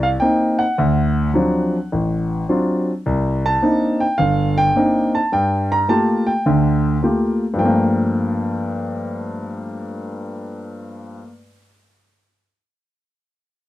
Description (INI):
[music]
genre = solo jazz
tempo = 106 BPM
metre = 4/4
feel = swing 69% on 8ths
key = G minor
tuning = A4 = 443 Hz
[part]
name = warm grand piano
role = solo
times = 0.0-11.3 s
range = G1 to Bb5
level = -17 LUFS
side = equal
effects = none
[sound]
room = light reverb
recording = dry, close 1970s-style studio recording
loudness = -16 LUFS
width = side -14 dB against mid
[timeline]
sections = 0.0-3.0 A section; 3.0-7.6 B section; 7.6-9.9 C section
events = none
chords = 0.0 Cm7; 0.8 D7#9; 3.0 Cm9; 5.3 Gm9